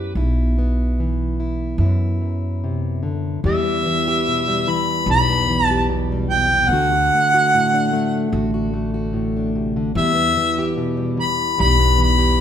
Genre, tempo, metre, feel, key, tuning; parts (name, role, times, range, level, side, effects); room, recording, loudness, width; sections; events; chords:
acoustic folk duo or small band; 74 BPM; 4/4; straight; E minor; A4 = 439 Hz
fingerpicked plugged-in steel-string acoustic guitar; accompaniment; 0.0-12.4 s; E2 to G4; -22 LUFS; left 1 dB
upright bass; bass; 0.0-12.4 s; A1 to F#2; -21 LUFS; equal
warm harmonica; melody; 3.5-12.4 s; E5 to B5; -18 LUFS; equal
moderate recital hall reverb, RT60 1.3 s; minimal, uncompressed stereo recording; -16 LUFS; side -9 dB against mid
0.0-3.4 A section; 3.4-12.4 B section
0.0 Bsus4; 3.4 Em; 6.7 D; 10.0 Em